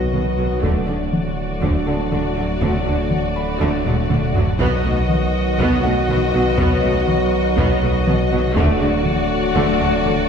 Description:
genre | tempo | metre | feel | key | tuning
cinematic, hybrid orchestral and electronic film score | 121 BPM | 4/4 | straight | unclear | A4 = 440 Hz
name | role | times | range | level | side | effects
rich symphonic violin section | melody | 0.0-10.3 s | D5 to D#5 | -27 LUFS | left 4 dB | none
warm symphonic violin section | second line | 0.0-10.3 s | F#4 | -27 LUFS | left 2 dB | none
clear trombone section | sustained chords | 0.0-10.3 s | D3 to F#3 | -25 LUFS | right 3 dB | none
mellow French horn section | sustained chords | 0.0-10.3 s | A3 to F#4 | -25 LUFS | left 4 dB | none
wide detuned saw bass | bass | 0.0-10.3 s | D1 to B1 | -25 LUFS | equal | chorus
felt-muted upright piano | texture | 0.0-8.6 s | A4 to B5 | -35 LUFS | left 2 dB | none
rich symphonic viola section | accompaniment | 0.1-10.1 s | F#3 to B3 | -27 LUFS | equal | none
clear symphonic double bass section | bass | 0.1-10.1 s | B1 to D2 | -25 LUFS | right 2 dB | none
rich symphonic cello section | bass | 0.1-10.1 s | B2 to D3 | -25 LUFS | right 2 dB | none
taiko ensemble | drums | 0.1-10.3 s | none | -23 LUFS | equal | none
room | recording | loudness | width
wet scoring stage reverb, RT60 1.8 s | heard from further back in the room | -16 LUFS | side -7 dB against mid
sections
0.0-10.3 A section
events
drum fill 3.9-4.6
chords
0.0 B; 0.6 D; 4.6 B; 8.6 D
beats
0.14 | 0.63 1.13 1.62 2.12 | 2.62 3.11 3.61 4.10 | 4.60 5.09 5.59 6.09 | 6.58 7.08 7.57 8.07 | 8.56 9.06 9.56 10.05

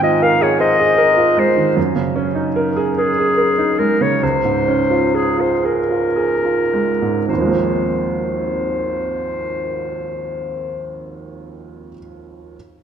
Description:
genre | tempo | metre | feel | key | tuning
classical, impressionist duo for clarinet and grand piano | 34-52 BPM (dotted quarters) | 6/8 | rubato | Ab major | A4 = 440 Hz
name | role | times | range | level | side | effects
warm clarinet | melody | 0.0-11.2 s | Ab4 to F5 | -18 LUFS | left 2 dB | none
bright baby grand piano | accompaniment | 0.0-12.6 s | Ab1 to C5 | -18 LUFS | right 3 dB | none
room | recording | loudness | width
wet recital hall reverb, RT60 1.8 s | dark, warm production | -15 LUFS | side -8 dB against mid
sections
0.0-7.3 A section; 7.3-10.4 B section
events
slowing down 0.6-7.3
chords
0.0 Ab69; 1.8 Gb69; 4.2 Dbmaj7; 7.3 Ab69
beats
0.60 | 1.77 2.96 | 4.22 5.63 | 7.29 8.89

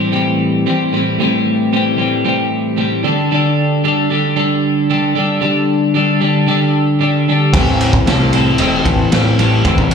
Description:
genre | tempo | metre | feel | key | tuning
indie rock | 113 BPM | 4/4 | straight | A minor | A4 = 440 Hz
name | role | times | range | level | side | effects
twelve-string electric guitar | riff | 0.0-9.9 s | A2 to A4 | -13 LUFS | equal | double-tracked left and right
growling picked electric bass | bass | 7.5-9.9 s | E1 to C2 | -16 LUFS | equal | overdrive
raw garage drum kit | drums | 7.5-9.9 s | crash cymbal, kick drum, ride cymbal, snare drum | -16 LUFS | right 1 dB | none
room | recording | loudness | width
light reverb | live gig heard through the venue's PA, club reverb | -12 LUFS | side -6 dB against mid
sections
0.0-9.9 A section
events
none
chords
0.0 Am7; 3.0 Dsus4; 7.5 Am7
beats
0.13 0.66 | 1.19 1.72 2.25 2.78 | 3.31 3.84 4.37 4.89 | 5.42 5.95 6.48 7.01 | 7.54 8.07 8.60 9.12 | 9.65

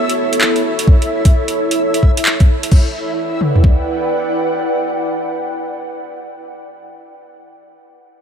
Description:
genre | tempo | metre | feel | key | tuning
future garage | 130 BPM | 4/4 | swing 64% on 16ths | E dorian | A4 = 440 Hz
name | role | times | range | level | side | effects
ethereal airy pad | sustained chords | 0.0-6.2 s | B3 to G5 | -18 LUFS | right 1 dB | ensemble chorus, built-in reverb, sidechain pumping
backwards swelling texture | texture | 0.0-2.7 s | E4 to E5 | -26 LUFS | left 1 dB | built-in reverb
garage drum kit | drums | 0.1-2.8 s | crash cymbal, handclaps, hi-hat | -19 LUFS | right 1 dB | overdrive, small room ambience
garage drum kit | drums | 0.9-3.8 s | kick drum, toms | -10 LUFS | equal | overdrive, small room ambience
room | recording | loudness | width
light reverb, digital ambience | none | -13 LUFS | side -8 dB against mid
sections
0.0-2.7 A section; 2.7-6.4 B section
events
none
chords
0.0 A; 2.7 Em7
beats
0.41 | 0.87 1.33 1.79 2.26 | 2.72 3.18 3.64 4.10 | 4.56 5.03 5.49 5.95

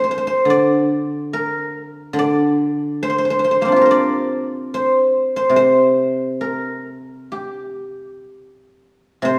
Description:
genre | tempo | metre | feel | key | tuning
chinese traditional, Chinese solo plucked strings | 59-72 BPM | 4/4 | rubato | unclear | A4 = 440 Hz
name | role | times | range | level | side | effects
guzheng | solo | 0.0-9.4 s | C3 to D5 | -18 LUFS | equal | none
room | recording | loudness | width
wet scoring stage reverb, RT60 1.7 s | small room ambience | -17 LUFS | mono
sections
0.0-9.2 A section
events
none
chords
none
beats
0.48 1.32 | 2.16 3.00 3.84 4.68 | 5.53 6.39 7.30 8.28 | 9.25

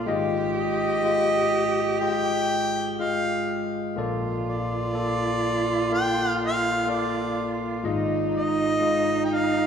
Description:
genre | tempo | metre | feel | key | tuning
acoustic folk-pop ballad | 62 BPM | 4/4 | straight | unclear | A4 = 439 Hz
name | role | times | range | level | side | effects
warm cello | second line | 0.0-9.7 s | Eb4 to G4 | -28 LUFS | right 3 dB | none
overdriven tine electric piano | accompaniment | 0.0-9.7 s | Ab1 to Eb5 | -26 LUFS | left 3 dB | none
mellow harmonica | melody | 0.6-9.7 s | D5 to G5 | -26 LUFS | right 1 dB | none
room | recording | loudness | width
wet church reverb, RT60 3.7 s | recorded in a church or concert hall | -22 LUFS | side -7 dB against mid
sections
0.0-9.7 A section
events
none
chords
0.1 Fm7/Ab; 4.0 Bbmaj7; 7.9 Fm7/Ab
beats
| 0.09 1.06 2.03 3.00 | 3.98 4.95 5.92 6.89 | 7.86 8.82

